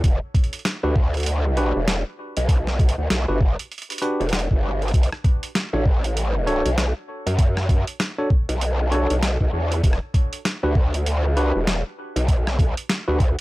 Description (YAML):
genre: glitch hop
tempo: 98 BPM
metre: 4/4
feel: swing 60% on 16ths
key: unclear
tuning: A4 = 440 Hz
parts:
  - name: growl bass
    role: bass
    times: 0.0-13.4 s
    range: E1 to F#2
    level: -21 LUFS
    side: equal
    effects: chorus, overdrive
  - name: boom bap sampler-style drum kit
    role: drums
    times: 0.0-13.4 s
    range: hi-hat, rim click, snare drum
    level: -26 LUFS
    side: equal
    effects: none
  - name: electronic kick drum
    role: drums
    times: 0.0-13.3 s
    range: none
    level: -18 LUFS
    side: equal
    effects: none
  - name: tine electric piano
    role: stabs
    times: 0.8-13.2 s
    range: D4 to C#5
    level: -26 LUFS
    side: equal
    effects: sidechain pumping, dub echo
room: little or no reverb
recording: none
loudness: -19 LUFS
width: side -19 dB against mid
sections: 0.0-13.4 A section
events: none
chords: 0.0 Em9; 4.9 Bm7; 9.8 E7(no3)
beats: | 0.04 0.65 1.27 1.88 | 2.49 3.10 3.71 4.33 | 4.94 5.55 6.16 6.78 | 7.39 8.00 8.61 9.22 | 9.84 10.45 11.06 11.67 | 12.29 12.90